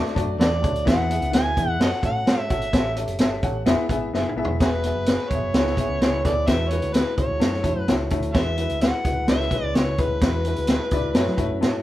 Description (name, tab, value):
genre	uptempo 1960s-style soul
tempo	128 BPM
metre	4/4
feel	straight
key	E mixolydian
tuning	A4 = 440 Hz
part	clear upright piano	accompaniment	0.0-11.8 s	G#3 to F#5	-26 LUFS	left 2 dB	none
part	picked electric bass	bass	0.0-11.8 s	E1 to F#3	-28 LUFS	equal	none
part	vintage drum kit	drums	0.1-11.7 s	hi-hat, kick drum, snare drum, toms	-22 LUFS	equal	none
part	overdriven harmonica	melody	0.4-11.8 s	F#4 to G#5	-26 LUFS	equal	none
room	light reverb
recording	band playing live in one room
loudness	-19 LUFS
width	side -14 dB against mid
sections	0.0-4.6 A section; 4.6-11.8 B section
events	drum fill 4.1-4.6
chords	0.0 D; 0.9 E; 1.8 F#m; 2.7 A7; 3.7 Eadd9; 5.5 C#m7; 6.5 Eadd9; 7.4 F#m7; 8.3 Eadd9; 9.3 C#m7; 10.2 Eadd9; 11.2 F#m7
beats	0.40 | 0.87 1.34 1.81 2.27 | 2.74 3.21 3.67 4.14 | 4.61 5.08 5.54 6.01 | 6.48 6.95 7.42 7.88 | 8.35 8.82 9.29 9.75 | 10.22 10.69 11.16 11.62